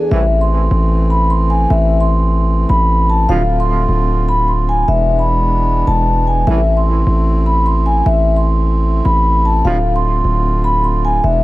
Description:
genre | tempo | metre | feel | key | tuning
hip hop | 151 BPM | 4/4 | half-time | A harmonic minor | A4 = 441 Hz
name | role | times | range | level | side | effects
vibraphone with soft mallets | melody | 0.0-11.4 s | E5 to C6 | -16 LUFS | equal | none
pedal harmonium | sustained chords | 0.0-11.4 s | D3 to F4 | -22 LUFS | equal | none
warm brass ensemble | stabs | 0.1-0.2, 3.3-3.4, 6.5-6.6, 9.7-9.8 s | C2 to F3 | -24 LUFS | right 2 dB | digital delay
hard-hitting 808-style bass | bass | 0.1-11.4 s | D1 to A1 | -14 LUFS | equal | none
room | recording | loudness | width
small room ambience | none | -12 LUFS | side -18 dB against mid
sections
0.1-11.4 A section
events
none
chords
0.1 Am; 3.3 Dm7; 4.9 E7; 6.5 Am; 9.7 Dm7

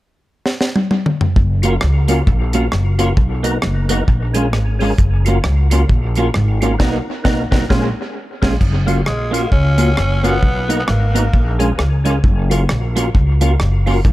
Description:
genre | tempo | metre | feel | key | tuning
ska | 132 BPM | 4/4 | swing 60% on 8ths | F# major | A4 = 440 Hz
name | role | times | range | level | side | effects
deep reggae drum kit | drums | 0.5-14.1 s | crash cymbal, hi-hat, kick drum, rim click, snare drum, toms | -18 LUFS | equal | tape echo
upright bass | bass | 1.4-14.1 s | F#1 to C#2 | -16 LUFS | equal | none
clean electric guitar | accompaniment | 1.6-14.0 s | G#3 to F#4 | -22 LUFS | right 3 dB | wide subtle chorus
percussive tonewheel organ | stabs | 1.6-14.0 s | A#3 to A#4 | -23 LUFS | left 2 dB | chorus vibrato, fast rotary speaker, tape echo
growling tenor saxophone | melody | 9.1-11.6 s | G#3 to C#4 | -22 LUFS | equal | tape echo
room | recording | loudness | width
light reverb | none | -13 LUFS | side -16 dB against mid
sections
0.0-1.4 A section; 1.4-8.6 B section; 8.6-14.1 C section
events
drum fill 0.5-1.4; band accent 6.8-8.6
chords
0.0 N.C.; 1.4 F#maj7; 3.2 Bmaj7; 4.1 A#m7; 5.0 F#maj7; 6.8 Bmaj7; 7.7 A#m7; 8.6 F#maj7; 10.4 Bmaj7; 11.3 A#m7; 12.2 F#maj7

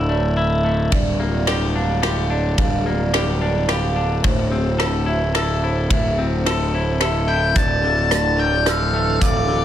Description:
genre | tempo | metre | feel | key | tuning
post-rock | 108 BPM | 3/4 | straight | D minor | A4 = 442 Hz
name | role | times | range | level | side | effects
clean electric guitar | arpeggios | 0.0-9.6 s | D2 to A4 | -24 LUFS | left 4 dB | digital delay
vibraphone with medium mallets | arpeggios | 0.0-9.6 s | C5 to E6 | -26 LUFS | right 5 dB | digital delay
fuzz picked electric bass | bass | 0.0-9.6 s | D1 | -21 LUFS | equal | overdrive
loose indie drum kit | drums | 0.9-9.3 s | hi-hat, kick drum, ride cymbal, rim click | -22 LUFS | equal | none
octave-fuzz lead guitar | melody | 7.3-9.6 s | D5 to A5 | -20 LUFS | left 5 dB | distortion, digital delay
icy glass pad | sustained chords | 8.7-9.6 s | D3 to A4 | -28 LUFS | right 3 dB | chorus, built-in reverb
room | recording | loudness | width
light reverb, small room reverb | none | -17 LUFS | side -10 dB against mid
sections
0.0-7.6 A section; 7.6-9.6 B section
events
none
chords
0.0 Dsus2; 0.9 Gm7/D; 4.2 Am/D; 7.6 Dmadd9

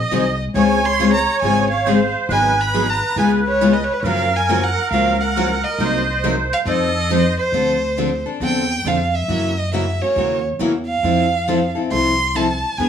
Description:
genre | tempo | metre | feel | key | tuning
acoustic string swing (jazz manouche) | 137 BPM | 4/4 | swing 64% on 8ths | D minor from 7.5 s | A4 = 437 Hz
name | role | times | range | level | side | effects
warm violin | melody | 0.0-12.9 s | Cb5 to C6 | -20 LUFS | right 2 dB | none
musette accordion | second line | 0.0-7.5 s | A4 to Eb5 | -22 LUFS | right 3 dB | none
upright bass | bass | 0.0-12.9 s | Ab1 to Gb2 | -24 LUFS | equal | none
picked steel-string acoustic guitar | accompaniment | 0.1-12.9 s | C3 to Bb4 | -21 LUFS | left 7 dB | none
picked steel-string acoustic guitar | accompaniment | 0.1-12.9 s | C3 to B4 | -24 LUFS | right 4 dB | none
room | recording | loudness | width
moderate studio reverb, RT60 0.7 s | studio reverb | -15 LUFS | side -8 dB against mid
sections
0.0-7.5 A section; 7.5-12.9 B section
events
none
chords
0.0 Ab7; 0.6 Dbmaj7; 2.3 Abm7; 3.2 Db7; 4.0 Gbmaj7; 5.8 Cm7b5; 6.7 F7; 7.5 Dm7; 9.3 F#7; 11.0 Fmaj7

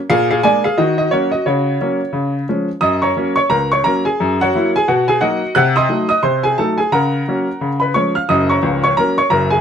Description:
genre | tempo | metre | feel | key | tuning
jazz, stride piano | 176 BPM | 4/4 | swing 61% on 8ths | F# major | A4 = 442 Hz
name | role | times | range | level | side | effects
clear upright piano | solo | 0.1-9.6 s | C#1 to Gb6 | -13 LUFS | equal | none
room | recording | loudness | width
moderate studio reverb, RT60 0.6 s | none | -13 LUFS | side -8 dB against mid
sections
0.0-2.8 A section; 2.8-9.6 B section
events
none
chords
0.1 A#7; 0.8 D#m7; 1.5 F#/C#; 2.1 C#; 2.8 F#; 4.2 F#7; 4.9 Bmaj7; 5.6 Cdim7; 6.9 F#/C#; 7.6 C#; 8.3 F#

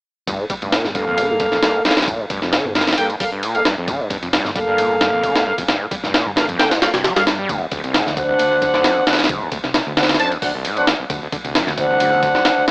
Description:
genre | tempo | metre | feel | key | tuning
breakbeat, breaks | 133 BPM | 4/4 | swing 53% on 16ths | G minor | A4 = 440 Hz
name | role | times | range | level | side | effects
overdriven acid bass | riff | 0.3-12.7 s | C2 to G3 | -24 LUFS | equal | distortion, wide subtle chorus, analog delay
hollow-body short-scale picked electric bass | bass | 0.3-12.4 s | F1 to G2 | -30 LUFS | equal | none
breakbeat sampler-style drum kit | drums | 0.3-12.7 s | hi-hat, kick drum, ride cymbal, snare drum | -18 LUFS | equal | small room ambience
bright brass ensemble | stabs | 0.9-12.7 s | Bb3 to A5 | -18 LUFS | equal | low-pass filter, analog delay
room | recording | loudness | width
light reverb | dry, gritty hardware recording, AM radio sound | -15 LUFS | side -38 dB against mid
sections
0.3-12.7 A section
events
none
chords
0.3 Gm9; 7.5 D7

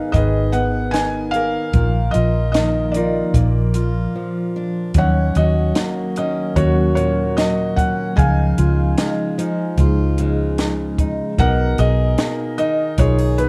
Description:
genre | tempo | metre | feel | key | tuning
folk | 75 BPM | 4/4 | straight | Eb minor | A4 = 440 Hz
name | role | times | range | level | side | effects
felt-muted upright piano | melody | 0.0-13.5 s | F4 to Ab5 | -24 LUFS | equal | none
fingerpicked steel-string acoustic guitar | accompaniment | 0.0-13.5 s | Eb2 to Ab4 | -27 LUFS | equal | none
vibraphone with soft mallets | arpeggios | 0.0-13.5 s | F3 to Bb4 | -26 LUFS | equal | none
vintage muted fingered electric bass | bass | 0.1-13.5 s | Ab1 to Eb2 | -20 LUFS | equal | none
compact cocktail drum kit | drums | 0.1-13.5 s | hi-hat, kick drum, snare drum | -23 LUFS | equal | none
room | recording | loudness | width
light reverb | dark, warm production | -18 LUFS | mono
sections
0.0-5.0 A section; 5.0-13.5 B section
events
break 4.2-5.0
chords
0.0 Abm; 1.7 Bbsus4; 3.3 Bb; 5.0 Ebm7; 8.2 Dbadd9; 11.4 Abmadd9/Cb

